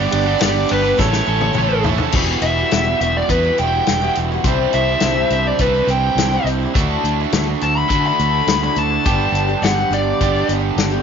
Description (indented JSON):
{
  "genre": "folk rock and heartland rock",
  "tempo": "104 BPM",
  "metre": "4/4",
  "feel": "straight",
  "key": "unclear",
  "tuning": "A4 = 440 Hz",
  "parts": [
    { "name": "bluesy overdriven lead guitar", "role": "melody", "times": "0.0-10.5 s", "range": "B4 to B5", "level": "-19 LUFS", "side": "equal", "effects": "distortion" },
    { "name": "bright upright piano", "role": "accompaniment", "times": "0.0-2.1 s", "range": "E4 to D5", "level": "-30 LUFS", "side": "right 12 dB", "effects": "none" },
    { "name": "picked twelve-string acoustic guitar", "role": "accompaniment", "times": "0.0-11.0 s", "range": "E2 to B4", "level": "-24 LUFS", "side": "left 12 dB", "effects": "none" },
    { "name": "overdriven electric guitar", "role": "riff", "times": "0.0-11.0 s", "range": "E2 to A4", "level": "-22 LUFS", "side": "right 14 dB", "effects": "none" },
    { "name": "fingered electric bass", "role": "bass", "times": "0.0-11.0 s", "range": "E1 to D3", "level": "-21 LUFS", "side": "equal", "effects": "none" },
    { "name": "natural country drum kit", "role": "drums", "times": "0.1-10.9 s", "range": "crash cymbal, hi-hat, kick drum, ride cymbal, snare drum, toms", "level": "-21 LUFS", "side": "left 3 dB", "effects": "none" }
  ],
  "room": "light reverb, small room reverb",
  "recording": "1960s-style stereo with parts hard left and right, nothing above 7.5 kHz",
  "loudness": "-14 LUFS",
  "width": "side -7 dB against mid",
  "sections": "0.0-2.1 A section; 2.1-11.0 B section",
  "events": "drum fill 1.0-2.1; lead electric guitar solo 2.1-11.0",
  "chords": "0.0 G; 1.0 A; 2.1 Emadd9; 4.4 Cadd9; 6.8 Dadd9; 9.1 G"
}